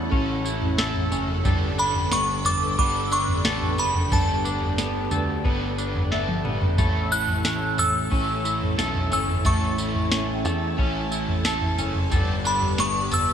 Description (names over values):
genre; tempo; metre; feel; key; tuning
dream pop; 90 BPM; 4/4; straight; A mixolydian; A4 = 436 Hz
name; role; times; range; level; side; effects
glassy synth bell; melody; 0.0-13.3 s; A5 to F#6; -25 LUFS; equal; chorus, digital delay
overdriven electric guitar; accompaniment; 0.0-13.3 s; A2 to A4; -32 LUFS; right 3 dB; harmonic tremolo, lush chorus
string machine, cellos; sustained chords; 0.0-13.3 s; C#4 to A5; -31 LUFS; equal; ensemble chorus
clean electric guitar; arpeggios; 0.0-13.3 s; G3 to A4; -30 LUFS; left 2 dB; wide subtle chorus, digital delay
modern bright picked electric bass; bass; 0.0-13.3 s; F#1 to E2; -30 LUFS; equal; none
large celesta; texture; 0.0-12.4 s; E5 to F#6; -36 LUFS; left 1 dB; analog chorus, digital delay
soft vintage rhythm box; drums; 0.1-13.3 s; kick drum, snare drum, tambourine, toms; -25 LUFS; equal; none
room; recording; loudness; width
light reverb, digital ambience; bright 1980s-style digital production; -21 LUFS; side -8 dB against mid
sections
0.0-13.3 A section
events
drum fill 6.1-6.8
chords
0.0 A; 1.5 Gadd9; 6.8 A; 12.1 Gadd9